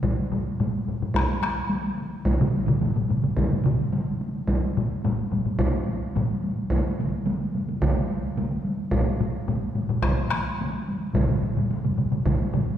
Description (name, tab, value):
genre	japanese traditional, taiko drum ensemble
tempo	108 BPM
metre	4/4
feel	straight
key	none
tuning	none
part	solo taiko drums	percussion	0.0-12.4 s	none	-28 LUFS	right 1 dB	none
part	taiko ensemble	percussion	0.0-12.7 s	none	-28 LUFS	left 1 dB	none
part	taiko ensemble	percussion	0.0-12.7 s	none	-27 LUFS	left 2 dB	none
part	taiko ensemble	percussion	2.4-12.7 s	none	-28 LUFS	right 3 dB	none
room	wet concert hall reverb, RT60 2.2 s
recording	heard from further back in the room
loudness	-23 LUFS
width	side -10 dB against mid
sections	0.0-12.8 A section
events	none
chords	none